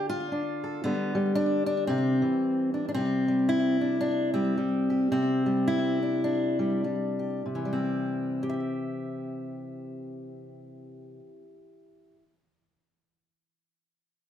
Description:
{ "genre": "folk, solo fingerstyle acoustic guitar", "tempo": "97-114 BPM", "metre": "4/4", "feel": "swing 58% on 8ths", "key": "C major", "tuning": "A4 = 440 Hz", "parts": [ { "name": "fingerpicked steel-string acoustic guitar", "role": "solo", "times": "0.0-12.2 s", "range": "C3 to E5", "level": "-26 LUFS", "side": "left 1 dB", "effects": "slapback echo" } ], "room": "moderate large studio reverb, RT60 0.9 s", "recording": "none", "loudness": "-25 LUFS", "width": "side -10 dB against mid", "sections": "0.0-3.0 A section; 3.0-7.4 B section; 7.4-12.4 C section", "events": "slowing down 3.0-7.4", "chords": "0.0 Dm; 0.8 G/D; 1.9 Cadd9; 7.4 C" }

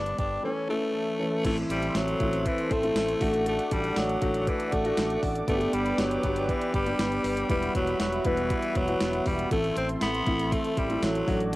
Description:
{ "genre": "1980s-style pop", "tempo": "119 BPM", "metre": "4/4", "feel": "straight", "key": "unclear", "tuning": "A4 = 442 Hz", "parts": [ { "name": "raspy tenor saxophone", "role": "melody", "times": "0.0-11.6 s", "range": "E3 to D4", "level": "-29 LUFS", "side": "left 1 dB", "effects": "cassette tape" }, { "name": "warm grand piano", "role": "accompaniment", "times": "0.0-11.6 s", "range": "E3 to B4", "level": "-31 LUFS", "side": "left 1 dB", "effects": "cassette tape" }, { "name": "clean electric guitar", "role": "riff", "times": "0.0-11.6 s", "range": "E3 to A4", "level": "-34 LUFS", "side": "right 3 dB", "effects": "wide subtle chorus, cassette tape" }, { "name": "modern bright fingered electric bass", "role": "bass", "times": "0.0-11.6 s", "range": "E1 to A1", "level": "-34 LUFS", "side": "equal", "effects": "none" }, { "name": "clean 12-bit digital drum machine", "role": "drums", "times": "0.1-11.6 s", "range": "crash cymbal, hi-hat, kick drum, snare drum, tambourine", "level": "-31 LUFS", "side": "equal", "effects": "overdrive" }, { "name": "brassy analog pad", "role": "sustained chords", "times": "1.5-11.6 s", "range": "F#4 to D6", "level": "-34 LUFS", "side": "equal", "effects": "chorus, cassette tape" } ], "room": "light reverb", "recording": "home recording on cassette", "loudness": "-24 LUFS", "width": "side -18 dB against mid", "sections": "0.0-1.4 A section; 1.4-11.6 B section", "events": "none", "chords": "0.4 A; 1.4 Am; 3.2 D/A; 5.5 G; 7.5 Emadd9; 9.5 Am" }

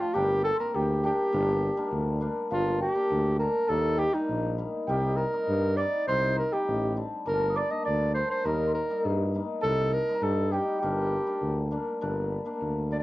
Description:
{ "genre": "klezmer", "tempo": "101 BPM", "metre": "2/4", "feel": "straight", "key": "G minor", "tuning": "A4 = 442 Hz", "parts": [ { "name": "dark clarinet", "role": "melody", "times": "0.0-13.0 s", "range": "Eb4 to Eb5", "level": "-28 LUFS", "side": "right 1 dB", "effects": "none" }, { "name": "celesta", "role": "second line", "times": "0.0-11.7 s", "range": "Eb5 to Eb6", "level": "-34 LUFS", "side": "equal", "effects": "none" }, { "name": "cimbalom", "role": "accompaniment", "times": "0.0-13.0 s", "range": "F3 to Eb4", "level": "-32 LUFS", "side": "left 2 dB", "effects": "none" }, { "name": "warm tuba", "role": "bass", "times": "0.2-13.0 s", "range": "G1 to G2", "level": "-30 LUFS", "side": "equal", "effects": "none" } ], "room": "light reverb", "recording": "worn, warbling old tape, cassette tape, warbly pitch drift", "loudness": "-25 LUFS", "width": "side -17 dB against mid", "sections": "0.0-2.5 A section; 2.5-12.0 B section; 12.0-13.0 C section", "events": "clarinet solo 12.0-13.0", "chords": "0.2 Gm; 3.7 Eb; 4.9 Cm; 7.3 Gm; 8.4 Eb; 9.6 Cm; 10.8 Gm" }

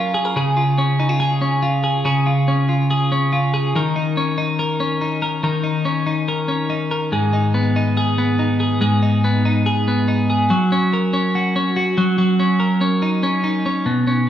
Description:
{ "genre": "indie pop", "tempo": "142 BPM", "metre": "4/4", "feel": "straight", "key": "unclear", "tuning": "A4 = 440 Hz", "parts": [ { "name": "twelve-string electric guitar", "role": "solo", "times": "0.0-14.3 s", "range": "G#2 to A#4", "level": "-16 LUFS", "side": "equal", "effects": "spring reverb" } ], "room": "wet large studio reverb, RT60 0.8 s", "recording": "band playing live in one room", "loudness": "-16 LUFS", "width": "side -10 dB against mid", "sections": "0.0-10.5 A section; 10.5-14.3 B section", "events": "none", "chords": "0.4 C#; 3.7 D#5; 7.1 G#m; 10.5 F#; 12.0 D#m7/F#" }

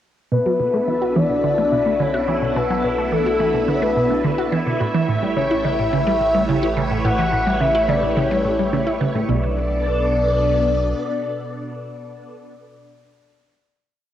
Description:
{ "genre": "ambient, sequencer-driven space music", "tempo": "107 BPM", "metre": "4/4", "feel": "straight", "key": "B minor", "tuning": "A4 = 438 Hz", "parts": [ { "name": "soft octave-layered synth lead", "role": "melody", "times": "0.3-12.3 s", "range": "A4 to F#5", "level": "-21 LUFS", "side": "left 3 dB", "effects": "chorus, cassette tape, tape echo" }, { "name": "phased string machine", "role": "sustained chords", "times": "0.6-12.3 s", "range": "B2 to D5", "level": "-24 LUFS", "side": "right 2 dB", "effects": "ensemble chorus, phaser, cassette tape" }, { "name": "resonant blip pluck", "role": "riff", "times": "0.3-9.6 s", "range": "A2 to F#4", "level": "-22 LUFS", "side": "right 1 dB", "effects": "phaser, cassette tape, tape echo" }, { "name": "round analog bass", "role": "bass", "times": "0.3-10.9 s", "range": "A1 to B1", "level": "-28 LUFS", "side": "right 1 dB", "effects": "none" }, { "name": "bubbling stepped-filter texture", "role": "texture", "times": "0.3-9.3 s", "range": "E4 to E5", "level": "-28 LUFS", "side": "right 3 dB", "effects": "chorus, built-in reverb, cassette tape" } ], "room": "wet spring reverb, RT60 1.9 s", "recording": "home recording on cassette", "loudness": "-17 LUFS", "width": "side -11 dB against mid", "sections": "0.3-9.3 A section; 9.3-11.5 final chord", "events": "fade-in on analog synth bass 0.3-9.3", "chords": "0.3 Bm7; 4.8 A7; 9.3 Bm7" }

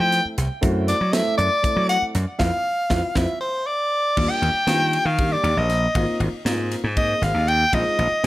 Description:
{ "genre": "electric jazz fusion", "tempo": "237 BPM (eighths)", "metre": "7/8", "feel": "straight", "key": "unclear", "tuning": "A4 = 441 Hz", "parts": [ { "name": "bright soprano saxophone", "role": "melody", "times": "0.0-8.3 s", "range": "C5 to G5", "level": "-21 LUFS", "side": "equal", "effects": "plate reverb" }, { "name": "dark baby grand piano", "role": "accompaniment", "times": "0.0-8.3 s", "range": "G3 to A4", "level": "-27 LUFS", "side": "equal", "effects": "none" }, { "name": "slap bass", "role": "bass", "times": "0.0-8.3 s", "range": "Ab1 to F#3", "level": "-23 LUFS", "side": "equal", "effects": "none" }, { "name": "crisp fusion drum kit", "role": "drums", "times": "0.1-8.3 s", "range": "crash cymbal, hi-hat, kick drum, ride cymbal, snare drum", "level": "-27 LUFS", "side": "equal", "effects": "none" } ], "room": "moderate studio reverb, RT60 0.6 s", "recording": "none", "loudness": "-18 LUFS", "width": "side -16 dB against mid", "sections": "0.0-4.2 A section; 4.2-8.3 A section", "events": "soprano saxophone solo 0.0-8.3; band accent 2.4-4.2; drum fill 2.7-4.2", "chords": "0.0 Fmaj9; 0.6 D9/F#; 2.4 F5; 3.4 N.C.; 4.2 Ebmaj9; 6.0 Ab69; 7.7 Bb7sus4" }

